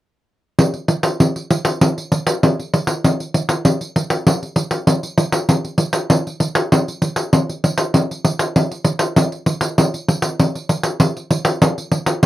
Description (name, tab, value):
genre	samba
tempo	98 BPM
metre	4/4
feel	straight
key	none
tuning	none
part	pandeiro	percussion	0.6-12.3 s	none	-15 LUFS	equal	none
room	moderate booth ambience, RT60 0.2 s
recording	dry, close 1970s-style studio recording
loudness	-16 LUFS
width	side -15 dB against mid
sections	0.6-12.3 A section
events	none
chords	none